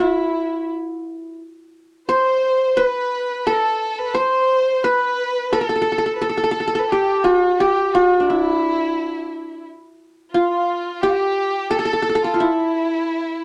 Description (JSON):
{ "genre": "Arabic maqam ensemble", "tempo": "87 BPM", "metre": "3/4", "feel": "straight", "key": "E maqam bayati, E maqam kurd from 10.3 s", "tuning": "A4 = 440 Hz", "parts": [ { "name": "qanun", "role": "melody", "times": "0.0-13.4 s", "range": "D4 to C5", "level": "-21 LUFS", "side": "equal", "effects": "none" }, { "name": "warm studio violin section", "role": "second line", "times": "0.0-13.4 s", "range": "E4 to C5", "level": "-32 LUFS", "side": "equal", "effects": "none" }, { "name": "warm violin", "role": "second line", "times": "0.0-13.4 s", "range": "E4 to C5", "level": "-26 LUFS", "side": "equal", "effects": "none" } ], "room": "moderate small room reverb, RT60 0.5 s", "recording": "none", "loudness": "-19 LUFS", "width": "mono", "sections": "0.0-10.3 A section; 10.3-13.4 B section", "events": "none", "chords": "none" }